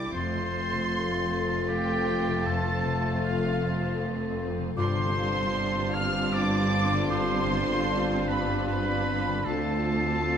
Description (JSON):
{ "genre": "cinematic", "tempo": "77 BPM", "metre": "3/4", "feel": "rubato", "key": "unclear", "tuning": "A4 = 443 Hz", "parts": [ { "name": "muted studio violin section", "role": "melody", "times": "0.0-10.4 s", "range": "F5 to F6", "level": "-33 LUFS", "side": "left 1 dB", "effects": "none" }, { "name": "clear oboe", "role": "second line", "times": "0.0-10.4 s", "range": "F4 to F5", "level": "-34 LUFS", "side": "right 2 dB", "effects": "none" }, { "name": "dark clarinet", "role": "second line", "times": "0.0-10.4 s", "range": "E4 to F4", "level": "-37 LUFS", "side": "left 1 dB", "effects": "none" }, { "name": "mellow hollow silver concert flute", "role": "second line", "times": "0.0-10.4 s", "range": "D6 to C7", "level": "-34 LUFS", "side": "equal", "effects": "none" }, { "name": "muted studio violin section", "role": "second line", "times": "0.0-10.4 s", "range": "D4 to G4", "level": "-37 LUFS", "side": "right 1 dB", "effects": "none" }, { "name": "muted symphonic viola section", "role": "accompaniment", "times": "0.0-10.4 s", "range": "G3 to C4", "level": "-34 LUFS", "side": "right 2 dB", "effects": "none" }, { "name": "warm French horn section", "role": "sustained chords", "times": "0.0-10.4 s", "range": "A3 to F4", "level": "-34 LUFS", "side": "left 4 dB", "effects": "none" }, { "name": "concert harp", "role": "arpeggios", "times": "0.0-10.4 s", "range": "F2 to D6", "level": "-34 LUFS", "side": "left 8 dB", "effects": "none" }, { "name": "muted studio cello section", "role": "bass", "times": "0.0-10.4 s", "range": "C2 to G2", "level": "-33 LUFS", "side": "right 2 dB", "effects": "none" }, { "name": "muted studio double bass section", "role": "bass", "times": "0.0-10.4 s", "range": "F1 to D2", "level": "-33 LUFS", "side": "right 4 dB", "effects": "none" } ], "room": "moderate scoring stage reverb, RT60 2.1 s", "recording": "none", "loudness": "-24 LUFS", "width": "side -8 dB against mid", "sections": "0.0-10.4 A section", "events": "none", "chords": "0.1 F; 4.8 G7sus4; 9.5 Dm7" }